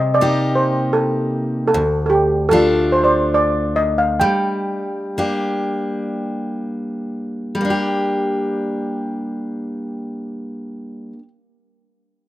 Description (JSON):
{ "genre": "celtic folk, Celtic slow air", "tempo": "46-80 BPM", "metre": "3/4", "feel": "rubato", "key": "G minor", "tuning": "A4 = 444 Hz", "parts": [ { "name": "steel pan", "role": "melody", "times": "0.0-6.3 s", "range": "G4 to G5", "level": "-17 LUFS", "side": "right 1 dB", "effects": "none" }, { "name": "picked steel-string acoustic guitar", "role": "accompaniment", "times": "0.0-11.3 s", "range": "D2 to G4", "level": "-20 LUFS", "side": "left 1 dB", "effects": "none" } ], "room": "light reverb, small room reverb", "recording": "rough home demo mix", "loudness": "-17 LUFS", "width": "side -15 dB against mid", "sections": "0.0-7.6 A section; 7.6-11.3 B section", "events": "slowing down 1.7-7.6", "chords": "0.0 Cm7; 1.7 Dm; 4.2 Gm", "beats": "0.19 0.96 | 1.72 2.51 3.33 | 4.21 5.18 6.31 | 7.60 8.87 10.09" }